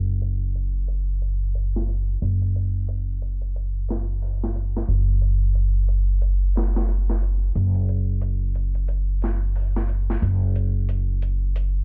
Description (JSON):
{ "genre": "trip hop", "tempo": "90 BPM", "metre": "4/4", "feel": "swing 58% on 16ths", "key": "unclear", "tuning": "A4 = 443 Hz", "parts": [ { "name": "upright bass", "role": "bass", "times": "0.0-11.8 s", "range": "F#1", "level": "-24 LUFS", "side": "equal", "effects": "none" }, { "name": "dusty soul sampler-style drum kit", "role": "drums", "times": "0.2-11.7 s", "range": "hi-hat, snare drum", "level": "-34 LUFS", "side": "equal", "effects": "overdrive, high-pass filter on kick, studio reverb, high-pass filter on hats, high-pass filter on snare" } ], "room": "little or no reverb", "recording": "low-pass filter", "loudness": "-24 LUFS", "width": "mono", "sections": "0.0-11.8 A section", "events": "filter sweep 0.0-11.8", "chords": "none" }